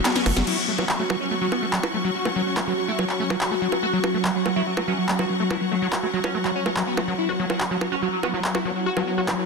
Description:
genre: psychedelic trance.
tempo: 143 BPM.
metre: 4/4.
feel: straight.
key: unclear.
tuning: A4 = 440 Hz.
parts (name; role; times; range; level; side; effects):
swarming drone; sustained chords; 0.0-9.5 s; F#3 to F#4; -30 LUFS; equal; built-in reverb.
clear symphonic string section; texture; 0.0-9.5 s; C#4 to C#6; -30 LUFS; left 2 dB; none.
overdriven synth lead; melody; 0.1-9.4 s; F#3 to F#4; -27 LUFS; equal; phaser, tape echo.
drum and bass drum kit; drums; 0.1-9.4 s; bongos, crash cymbal, handclaps, hi-hat, snare drum; -26 LUFS; right 1 dB; overdrive.
overdriven acid bass; riff; 0.2-9.3 s; F#3 to F#4; -28 LUFS; moving between left 6 dB and right 7 dB; auto-pan, digital delay.
formant-sweep wobble bass; second line; 7.3-9.3 s; B3; -40 LUFS; right 3 dB; none.
room: moderate lush hall reverb, RT60 2.4 s.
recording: dense, heavily limited modern master.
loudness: -21 LUFS.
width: side -4 dB against mid.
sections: 0.5-9.5 A section.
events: drum fill 0.0-0.5; band accent 0.4.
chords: 0.5 F#5.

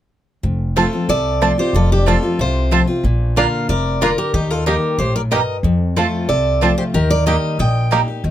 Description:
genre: bluegrass.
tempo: 184 BPM.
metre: 4/4.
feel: straight.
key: F mixolydian.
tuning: A4 = 440 Hz.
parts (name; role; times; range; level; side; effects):
picked steel-string acoustic guitar; accompaniment; 0.4-8.3 s; F2 to G4; -20 LUFS; left 2 dB; none.
upright bass; bass; 0.4-8.3 s; F1 to F2; -19 LUFS; equal; none.
bluegrass banjo; melody; 0.8-8.0 s; Bb3 to G4; -20 LUFS; right 2 dB; none.
picked steel-string acoustic guitar; melody; 0.8-8.1 s; G4 to G5; -20 LUFS; equal; none.
lap resonator guitar; second line; 0.8-8.1 s; D4 to Eb5; -26 LUFS; left 2 dB; none.
mandolin; stabs; 0.8-8.0 s; Bb3 to Bb5; -19 LUFS; right 7 dB; none.
room: little or no reverb.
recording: close, detailed microphones.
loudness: -14 LUFS.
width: side -12 dB against mid.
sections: 0.4-8.3 A section.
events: none.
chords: 0.4 F; 3.0 Bb; 4.3 Eb; 5.6 F; 6.9 Eb.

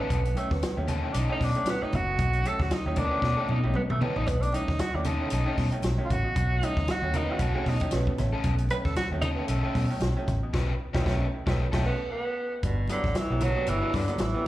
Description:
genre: funk.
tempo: 115 BPM.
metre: 4/4.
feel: swing 56% on 16ths.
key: B mixolydian.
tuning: A4 = 437 Hz.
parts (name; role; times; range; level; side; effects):
breathy tenor saxophone; melody; 0.0-14.5 s; B2 to B4; -30 LUFS; right 2 dB; slapback echo.
crunchy overdriven guitar; accompaniment; 0.0-14.0 s; C#4 to B4; -36 LUFS; left 6 dB; slapback echo.
bright upright piano; stabs; 0.1-14.5 s; G2 to C#4; -34 LUFS; right 1 dB; slapback echo, analog delay.
vintage muted fingered electric bass; bass; 0.1-14.3 s; F#1 to B2; -28 LUFS; equal; none.
compact cocktail drum kit; drums; 0.1-14.3 s; crash cymbal, hi-hat, kick drum, snare drum, toms; -32 LUFS; equal; none.
congas; percussion; 0.1-14.3 s; none; -36 LUFS; right 1 dB; slapback echo.
room: small room ambience.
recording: live gig heard through the venue's PA, club reverb.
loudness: -24 LUFS.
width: side -15 dB against mid.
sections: 0.0-12.6 A section; 12.6-14.5 B section.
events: tenor saxophone solo 0.0-12.6; drum fill 3.2-4.3; band accent 10.5-12.6.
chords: 0.0 B9; 12.6 Gmaj7.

